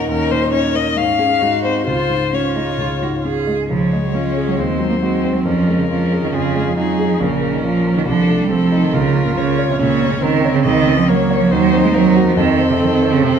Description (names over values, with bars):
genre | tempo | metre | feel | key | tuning
quick classical-period movement for piano quartet | 138 BPM | 4/4 | rubato | Db major | A4 = 441 Hz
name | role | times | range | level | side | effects
rich violin | melody | 0.0-13.4 s | Ab4 to F5 | -22 LUFS | left 7 dB | none
rich cello | second line | 0.0-13.4 s | Bb2 to Ab4 | -17 LUFS | right 5 dB | none
rich viola | accompaniment | 0.0-13.4 s | Ab3 to Gb4 | -22 LUFS | right 3 dB | none
warm grand piano | accompaniment | 0.0-13.4 s | Bb1 to Db5 | -20 LUFS | left 2 dB | none
room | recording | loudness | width
wet recital hall reverb, RT60 1.5 s | minimal, uncompressed stereo recording | -14 LUFS | side -7 dB against mid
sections
0.0-3.7 A section; 3.7-13.4 B section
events
none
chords
0.0 Eb5; 1.0 Db/Ab; 1.4 Ab7; 1.9 Db; 4.6 Cdim/Eb; 5.5 Db/F; 7.2 Bbm; 8.1 Adim/C; 8.9 Bbm/Db; 11.5 Cdim/Eb; 12.4 F